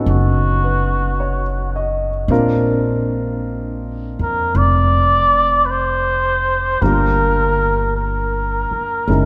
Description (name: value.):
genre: jazz ballad.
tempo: 53 BPM.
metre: 4/4.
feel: swing 68% on 8ths.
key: unclear.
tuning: A4 = 439 Hz.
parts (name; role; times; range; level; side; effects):
clear grand piano; accompaniment; 0.0-9.3 s; F#3 to E#5; -24 LUFS; equal; none.
upright bass; bass; 0.0-9.3 s; F1 to F2; -21 LUFS; equal; none.
trumpet with cup mute; melody; 0.1-9.3 s; F#4 to D5; -20 LUFS; equal; none.
room: wet church reverb, RT60 3.4 s.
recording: recorded in a church or concert hall.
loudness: -17 LUFS.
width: mono.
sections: 0.0-9.3 A section.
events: none.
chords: 0.0 B7#11; 2.3 Bbadd9; 6.8 Gm7.